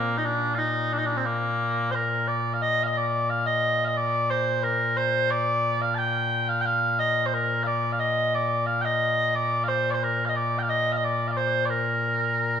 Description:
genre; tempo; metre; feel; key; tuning
scottish traditional, Scottish pipe music; 89 BPM; 2/4; straight; Bb major; A4 = 441 Hz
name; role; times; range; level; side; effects
mellow small bagpipes; solo; 0.0-12.6 s; Bb2 to A5; -22 LUFS; equal; none
room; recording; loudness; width
wet recital hall reverb, RT60 1.5 s; dark, warm production; -22 LUFS; side -8 dB against mid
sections
0.0-2.6 A section; 2.6-12.6 B section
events
none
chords
none

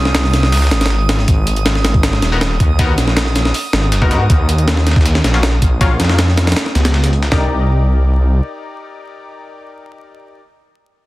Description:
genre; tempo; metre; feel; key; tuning
drum and bass, jungle; 159 BPM; 4/4; straight; C minor; A4 = 440 Hz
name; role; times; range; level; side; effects
detuned saw bass; bass; 0.0-8.4 s; Eb1 to Ab2; -14 LUFS; equal; none
drifting glass-harmonics texture; texture; 0.0-7.3 s; Eb6; -27 LUFS; right 5 dB; chorus, built-in reverb
breakbeat sampler-style drum kit; drums; 0.1-7.4 s; hi-hat, kick drum, snare drum; -15 LUFS; equal; none
dusty soul sampler-style drum kit; drums; 0.1-7.3 s; hi-hat, snare drum; -26 LUFS; left 1 dB; overdrive, high-pass filter on hats, high-pass filter on snare, high-pass filter on room
band-passed chord stab; stabs; 2.3-10.4 s; Gb3 to D5; -23 LUFS; left 3 dB; chorus, dub echo
room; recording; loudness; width
little or no reverb; dense, heavily limited modern master, vinyl crackle; -11 LUFS; side -18 dB against mid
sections
0.0-7.3 A section; 7.3-10.3 B section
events
drop 0.0-7.3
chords
0.0 Bbm7 (rootless); 1.3 Abm7; 4.3 Ebm7; 7.3 Cm7

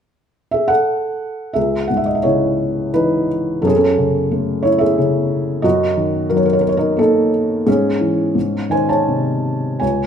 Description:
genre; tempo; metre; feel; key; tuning
classical, lyrical solo piano; 78-92 BPM; 3/4; rubato; C# minor; A4 = 440 Hz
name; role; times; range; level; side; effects
felt-muted upright piano; solo; 0.5-10.1 s; C#2 to A5; -14 LUFS; equal; none
room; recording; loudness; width
moderate recital hall reverb, RT60 1.4 s; minimal, uncompressed stereo recording; -14 LUFS; side -8 dB against mid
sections
0.0-1.6 A section; 1.6-10.1 B section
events
none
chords
0.0 F#m; 1.6 C#madd9; 3.6 F#madd9; 5.6 D#m/F#; 7.7 C#m/G#; 8.4 G#

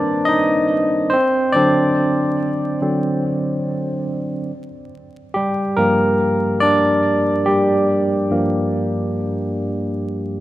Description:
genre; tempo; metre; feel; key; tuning
hip hop; 71 BPM; 4/4; swing 57% on 16ths; G minor; A4 = 441 Hz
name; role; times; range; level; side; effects
barky tine electric piano; solo; 0.0-10.4 s; G2 to Eb5; -16 LUFS; equal; medium stereo tremolo, cassette tape, low-pass filter, tape echo
room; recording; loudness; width
light reverb, digital ambience; rough home demo mix, vinyl crackle; -16 LUFS; side -15 dB against mid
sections
0.0-10.4 A section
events
tine electric piano solo 0.0-10.4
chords
0.0 Ebmaj7; 1.1 D7; 4.5 Gm7

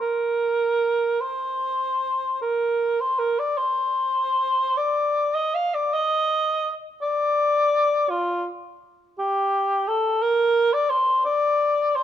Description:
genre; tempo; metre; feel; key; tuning
classical, free, expressive piece for unaccompanied cor anglais; 48-59 BPM (dotted quarters); 6/8; rubato; unclear; A4 = 440 Hz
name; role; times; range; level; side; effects
dark cor anglais; solo; 0.0-12.0 s; F4 to F5; -20 LUFS; equal; none
room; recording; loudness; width
light reverb; close, detailed microphones; -20 LUFS; side -10 dB against mid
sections
0.0-12.0 A section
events
none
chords
none

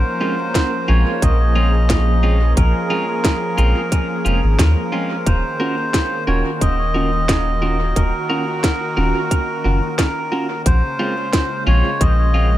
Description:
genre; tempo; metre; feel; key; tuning
ambient dub; 89 BPM; 4/4; swing 53% on 16ths; Eb dorian; A4 = 440 Hz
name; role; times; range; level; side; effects
melodica; melody; 0.0-12.6 s; Bb4 to Eb5; -22 LUFS; equal; dub echo
warm analog pad; sustained chords; 0.0-12.6 s; Db3 to Bb4; -24 LUFS; equal; chorus, tremolo
soft dub sub bass; bass; 0.0-12.6 s; Eb1 to Eb2; -16 LUFS; equal; none
clean electric guitar; stabs; 0.2-12.5 s; Ab3 to Bb4; -25 LUFS; right 2 dB; dub echo
electronic kick drum; drums; 0.5-12.2 s; none; -18 LUFS; equal; none
organic electronic drum kit; drums; 0.6-12.2 s; hi-hat, snare drum; -24 LUFS; equal; dub echo
room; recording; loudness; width
light reverb, digital ambience; none; -15 LUFS; side -14 dB against mid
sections
0.0-12.6 A section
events
none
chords
0.0 Bbm7; 5.3 Ebm7; 10.7 Bbm7

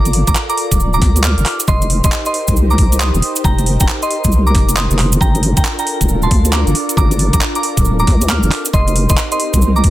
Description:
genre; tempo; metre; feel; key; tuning
UK garage, two-step garage; 136 BPM; 4/4; swing 64% on 16ths; G minor; A4 = 440 Hz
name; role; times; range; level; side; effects
soft synth bell; melody; 0.0-9.9 s; Eb5 to F6; -20 LUFS; right 1 dB; chorus, tape echo
soft string machine; sustained chords; 0.0-9.9 s; C4 to D5; -24 LUFS; equal; ensemble chorus, sidechain pumping
deep soft wobble bass; bass; 0.0-9.9 s; D1 to D2; -14 LUFS; equal; chorus
garage drum kit; drums; 0.1-9.9 s; handclaps, hi-hat, snare drum; -20 LUFS; right 1 dB; small room ambience, soft clipping on snare
cabasa; percussion; 0.1-9.8 s; none; -23 LUFS; right 3 dB; none
electronic kick drum; drums; 0.3-9.9 s; none; -14 LUFS; equal; small room ambience
room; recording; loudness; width
little or no reverb; dense, heavily limited modern master; -12 LUFS; side -15 dB against mid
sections
0.0-9.9 A section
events
none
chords
0.0 Gm7; 1.5 F9sus4; 5.2 Gm7; 8.5 F9sus4

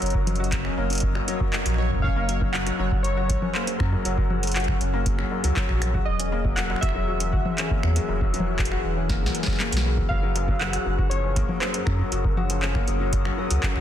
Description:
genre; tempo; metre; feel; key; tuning
IDM; 119 BPM; 4/4; straight; unclear; A4 = 438 Hz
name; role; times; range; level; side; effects
warbly lo-fi synth keys; melody; 0.0-12.3 s; Bb4 to Gb5; -32 LUFS; right 1 dB; chorus, ping-pong delay
glassy FM pad; sustained chords; 0.0-13.8 s; E3 to Gb5; -32 LUFS; left 1 dB; ensemble chorus, built-in reverb, sidechain pumping
felt-muted upright piano; arpeggios; 0.0-13.8 s; Gb2 to Gb4; -30 LUFS; left 5 dB; dub echo
warm sub bass; bass; 0.0-13.8 s; E1 to Gb2; -26 LUFS; equal; none
booming analog drum machine; drums; 0.0-13.8 s; congas, finger snaps, handclaps, hi-hat, snare drum; -29 LUFS; left 1 dB; none
pulsing gated texture; texture; 0.0-13.8 s; Db5 to Eb6; -39 LUFS; right 5 dB; chorus, built-in reverb, sidechain pumping
electronic kick drum; drums; 0.1-13.7 s; none; -27 LUFS; equal; none
room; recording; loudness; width
digital ambience; dense, heavily limited modern master; -21 LUFS; side -10 dB against mid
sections
0.0-13.8 A section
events
drum fill 9.1-10.1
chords
0.0 Ebm7/Gb; 2.0 Gb; 6.1 E; 10.1 Gbmaj7

